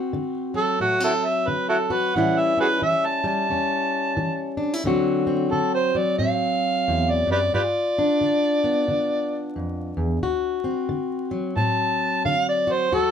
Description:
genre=acoustic country blues, solo or duo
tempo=89 BPM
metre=4/4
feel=swing 62% on 8ths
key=D mixolydian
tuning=A4 = 440 Hz
part: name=fingerpicked plugged-in steel-string acoustic guitar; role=accompaniment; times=0.0-13.1 s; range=D2 to F#4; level=-24 LUFS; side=left 1 dB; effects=none
part: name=overdriven harmonica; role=melody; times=0.6-13.1 s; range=E4 to A5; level=-21 LUFS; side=right 1 dB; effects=none
room=moderate studio ambience, RT60 0.5 s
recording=band playing live in one room, vinyl crackle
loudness=-20 LUFS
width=side -8 dB against mid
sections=0.0-4.8 A section; 4.8-13.1 B section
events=harmonica solo 4.8-13.1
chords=0.0 D7; 2.1 A7; 4.8 D7; 7.5 G7; 10.2 D7

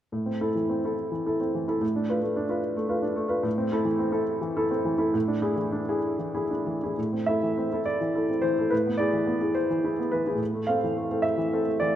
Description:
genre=classical, romantic character piece for solo piano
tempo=60-74 BPM (dotted quarters)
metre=6/8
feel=rubato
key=A minor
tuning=A4 = 438 Hz
part: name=warm baby grand piano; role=solo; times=0.1-12.0 s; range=A2 to F5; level=-24 LUFS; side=equal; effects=none
room=moderate scoring stage reverb, RT60 1.8 s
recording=none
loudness=-24 LUFS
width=side -11 dB against mid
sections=0.1-7.0 A section; 7.0-12.0 B section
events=none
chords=0.1 Am; 1.8 Bm7b5/A; 3.5 Am; 5.1 E7/A; 7.0 Am; 8.7 E7/A; 10.4 Am

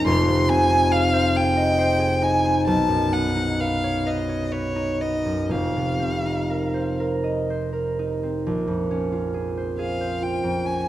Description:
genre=classical, impressionist duo for violin and harp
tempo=40-47 BPM (dotted quarters)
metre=6/8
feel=rubato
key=unclear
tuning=A4 = 440 Hz
part: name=rich violin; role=melody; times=0.0-10.9 s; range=C#5 to C6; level=-24 LUFS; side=left 1 dB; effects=none
part: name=concert harp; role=accompaniment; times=0.0-10.9 s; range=F1 to F5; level=-22 LUFS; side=equal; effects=none
room=wet recital hall reverb, RT60 1.7 s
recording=dark, warm production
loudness=-20 LUFS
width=side -13 dB against mid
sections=0.0-8.4 A section; 8.4-10.9 B section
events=none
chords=0.1 Fm7; 2.7 Badd9; 5.5 F7sus4; 8.4 Bbm9

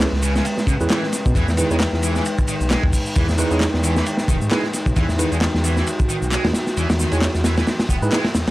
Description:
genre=breakbeat, breaks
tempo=133 BPM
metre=4/4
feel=swing 56% on 16ths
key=unclear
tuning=A4 = 440 Hz
part: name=dark analog pad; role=sustained chords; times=0.0-8.5 s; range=G#3 to B4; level=-26 LUFS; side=equal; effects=chorus, sidechain pumping
part: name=tine electric piano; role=stabs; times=0.0-8.2 s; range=C#4 to C#5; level=-26 LUFS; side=right 2 dB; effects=medium tremolo, vintage 12-bit sampler grit, tape echo
part: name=dark detuned saw bass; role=bass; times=0.0-8.5 s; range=E1 to C#3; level=-21 LUFS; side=equal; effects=none
part: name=crunchy breakbeat drum kit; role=drums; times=0.0-8.5 s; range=hi-hat, kick drum, ride cymbal, snare drum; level=-20 LUFS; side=equal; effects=none
part: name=electronic handclaps and shaker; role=drums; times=0.0-8.5 s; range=none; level=-29 LUFS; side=equal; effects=overdrive
part: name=distorted electric guitar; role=riff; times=0.2-8.5 s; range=B2 to B3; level=-28 LUFS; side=right 1 dB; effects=distortion, vintage 12-bit sampler grit, tape echo
room=studio reverb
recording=dry, gritty hardware recording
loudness=-17 LUFS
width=side -17 dB against mid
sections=0.0-8.5 A section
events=band accent 8.1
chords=0.0 C#m7; 1.4 Emaj7

